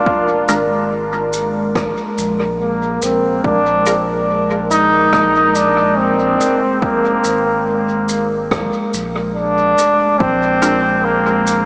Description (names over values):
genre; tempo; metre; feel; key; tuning
ambient dub; 71 BPM; 4/4; straight; Bb mixolydian; A4 = 441 Hz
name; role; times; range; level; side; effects
clear trombone; melody; 0.0-11.7 s; Bb3 to Eb4; -18 LUFS; equal; dub echo
deep dark ambient pad; sustained chords; 0.0-11.7 s; Ab3 to D5; -22 LUFS; equal; chorus, built-in reverb
filtered dub chord stab; stabs; 0.0-11.7 s; Ab3 to D5; -26 LUFS; equal; phaser, dub echo
warm sub bass; bass; 0.0-11.7 s; F1 to Bb1; -28 LUFS; equal; none
electronic kick drum; drums; 0.1-10.4 s; none; -25 LUFS; equal; overdrive
shaker and rim click; drums; 0.5-11.6 s; none; -30 LUFS; equal; dub echo
room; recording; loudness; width
wet huge ambient reverb, RT60 6.2 s; dreamy mix soaked in reverb, small speaker sound; -16 LUFS; mono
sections
0.0-10.2 A section; 10.2-11.7 B section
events
none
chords
0.0 Bb7